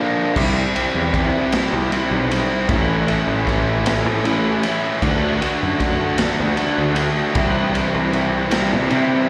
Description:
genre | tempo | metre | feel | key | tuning
quiet-loud alternative rock | 52 BPM (dotted quarters) | 6/8 | straight | C lydian | A4 = 439 Hz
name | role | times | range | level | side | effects
overdriven electric guitar | riff | 0.0-9.3 s | A2 to F#4 | -22 LUFS | equal | none
fuzz picked electric bass | bass | 0.4-9.2 s | A1 to C3 | -23 LUFS | equal | overdrive
raw garage drum kit | drums | 0.4-9.1 s | crash cymbal, kick drum, ride cymbal, snare drum | -25 LUFS | equal | none
room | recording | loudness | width
little or no reverb | live gig heard through the venue's PA, recital hall reverb | -19 LUFS | mono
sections
0.0-9.3 A section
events
none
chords
0.4 C; 2.7 A; 5.0 D; 7.4 C

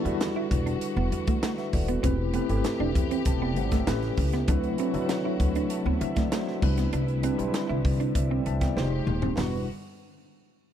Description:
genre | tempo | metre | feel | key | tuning
polished 1980s jazz-funk pop | 98 BPM | 4/4 | straight | E minor | A4 = 445 Hz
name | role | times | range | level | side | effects
mellow tine electric piano | accompaniment | 0.0-9.7 s | F#3 to C6 | -29 LUFS | left 2 dB | fast stereo tremolo, lush chorus
warm studio string section | sustained chords | 0.0-9.7 s | C3 to G4 | -39 LUFS | left 3 dB | none
electric guitar at the edge of break-up | riff | 0.1-9.6 s | A3 to E4 | -33 LUFS | right 8 dB | analog chorus
upright bass | bass | 0.1-9.7 s | D#1 to D3 | -29 LUFS | equal | none
crisp fusion drum kit | drums | 0.1-9.5 s | crash cymbal, hi-hat, kick drum, snare drum, toms | -29 LUFS | equal | none
room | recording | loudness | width
studio ambience | none | -24 LUFS | side -10 dB against mid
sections
0.0-9.4 A section; 9.4-10.7 B section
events
tine electric piano fill 7.5-9.4; drum fill 8.8-9.4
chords
0.0 Em9; 2.0 Am9/E; 3.9 A9; 4.5 D13; 6.6 Cmaj9; 8.8 Fm9; 9.4 Em9

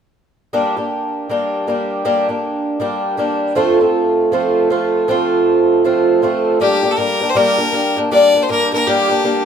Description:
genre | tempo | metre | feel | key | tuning
celtic folk, Celtic hornpipe | 158 BPM | 4/4 | swing 61% on 8ths | G minor | A4 = 440 Hz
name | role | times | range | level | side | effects
fingerpicked twelve-string acoustic guitar | accompaniment | 0.5-9.4 s | F3 to G4 | -14 LUFS | right 1 dB | none
bright fiddle | melody | 6.6-9.4 s | G4 to D5 | -15 LUFS | left 3 dB | none
room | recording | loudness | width
moderate small room reverb, RT60 0.5 s | none | -13 LUFS | side -8 dB against mid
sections
0.5-6.6 A section; 6.6-9.4 B section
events
none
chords
0.5 Gm; 3.6 F; 6.6 Gm

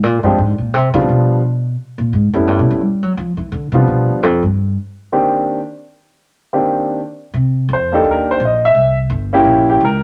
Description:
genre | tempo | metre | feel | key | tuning
jazz piano trio | 172 BPM | 4/4 | swing 62% on 8ths | C minor | A4 = 440 Hz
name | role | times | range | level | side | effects
upright bass | bass | 0.0-4.8, 7.3-10.0 s | G1 to G3 | -18 LUFS | equal | none
warm grand piano | melody | 0.2-10.0 s | Eb3 to E5 | -16 LUFS | equal | none
room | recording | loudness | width
moderate studio reverb, RT60 0.8 s | none | -15 LUFS | mono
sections
0.0-7.4 A section; 7.4-10.0 A section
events
upright bass solo 0.0-7.4; grand piano solo 7.4-10.0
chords
0.4 Dm7b5 (rootless); 1.1 G7; 1.8 F#sus2; 2.5 A7; 3.2 Dm7; 3.9 G7; 4.6 Cm7; 8.8 C7b9

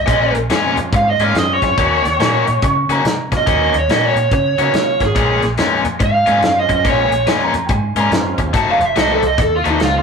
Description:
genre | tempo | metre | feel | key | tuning
electric blues shuffle | 142 BPM | 4/4 | swing 64% on 8ths | Bb minor | A4 = 440 Hz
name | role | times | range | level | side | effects
dark smooth lead guitar | melody | 0.0-10.0 s | Eb4 to A5 | -16 LUFS | right 2 dB | overdrive
vintage muted fingered electric bass | bass | 0.0-10.0 s | F1 to Db3 | -21 LUFS | equal | none
overdriven electric guitar | riff | 0.1-9.8 s | Bb2 to Gb4 | -18 LUFS | left 5 dB | spring reverb
warm soul drum kit | drums | 0.1-9.9 s | hi-hat, kick drum, snare drum | -20 LUFS | equal | none
tonewheel organ | accompaniment | 0.5-10.0 s | Gb3 to F4 | -26 LUFS | right 4 dB | slow rotary speaker, overdrive
warm upright piano | second line | 2.2-3.3, 7.3-8.5 s | G5 to Db6 | -22 LUFS | right 4 dB | none
room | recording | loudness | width
wet small room reverb, RT60 0.6 s | rough rehearsal-room recording | -13 LUFS | side -5 dB against mid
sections
0.0-10.0 A section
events
none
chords
0.1 Bbm7; 1.8 Ebm7; 5.2 Bbm7; 8.5 F7b9

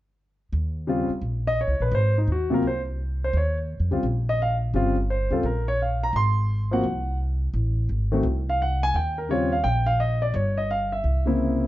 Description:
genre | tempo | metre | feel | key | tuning
jazz piano trio | 171 BPM | 4/4 | swing 64% on 8ths | Eb mixolydian | A4 = 440 Hz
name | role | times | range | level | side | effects
upright bass | bass | 0.5-11.7 s | G1 to F2 | -24 LUFS | equal | none
warm concert grand piano | melody | 0.9-11.7 s | C3 to C6 | -24 LUFS | equal | none
room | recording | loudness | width
light reverb | dark, warm production, nothing above 7.6 kHz | -22 LUFS | side -15 dB against mid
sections
0.5-11.7 A section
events
none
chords
0.5 Eb7(no3); 1.9 Ab7; 3.3 Eb13; 6.1 Ab7; 7.5 Am6; 8.9 Eb9; 10.3 Eb9/G (rootless); 11.0 C7b9

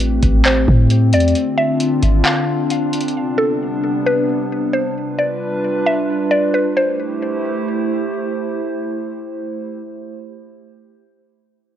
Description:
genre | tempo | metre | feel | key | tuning
hip hop, atmospheric cloud-rap | 133 BPM | 4/4 | half-time | A minor | A4 = 440 Hz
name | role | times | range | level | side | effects
warbly tape-like pad | sustained chords | 0.0-9.8 s | C3 to C5 | -19 LUFS | equal | chorus, built-in reverb, sidechain pumping
warm 808-style bass | bass | 0.0-1.3 s | A1 to A2 | -15 LUFS | equal | none
booming analog drum machine | drums | 0.0-3.2 s | handclaps, hi-hat, kick drum | -17 LUFS | equal | none
mallet-like synth pluck | melody | 0.5-8.1 s | A4 to F5 | -20 LUFS | equal | chorus, low-pass filter, ping-pong delay
room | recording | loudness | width
light reverb | worn, warbling old tape, cassette tape, warbly pitch drift | -15 LUFS | side -10 dB against mid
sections
0.0-6.8 A section; 6.8-10.4 B section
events
none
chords
0.0 Am7; 1.4 Dm7; 3.2 C5; 5.0 G7; 6.8 Am7

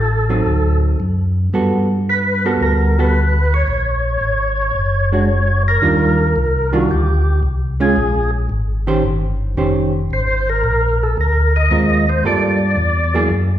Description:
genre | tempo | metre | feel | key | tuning
soul jazz organ trio | 112 BPM | 4/4 | swing 69% on 8ths | Eb major from 5.8 s | A4 = 439 Hz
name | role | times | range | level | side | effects
percussive tonewheel organ | melody | 0.0-13.3 s | Gb4 to Eb5 | -18 LUFS | equal | slow rotary speaker, overdrive, chorus vibrato
mellow tonewheel organ | bass | 0.0-13.6 s | F1 to G2 | -17 LUFS | equal | slow rotary speaker
hollow-body jazz guitar | accompaniment | 0.3-13.3 s | Eb3 to C5 | -19 LUFS | right 2 dB | none
room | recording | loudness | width
wet recital hall reverb, RT60 1.4 s | recorded in a church or concert hall | -14 LUFS | side -11 dB against mid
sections
0.0-5.8 A section; 5.8-13.6 B section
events
none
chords
0.5 D7b9; 1.5 Gmaj9; 3.7 Bbm7b13; 5.8 Ebmaj9; 8.0 Bbm7; 9.0 Eb13; 10.1 Ab69; 12.2 Gm9

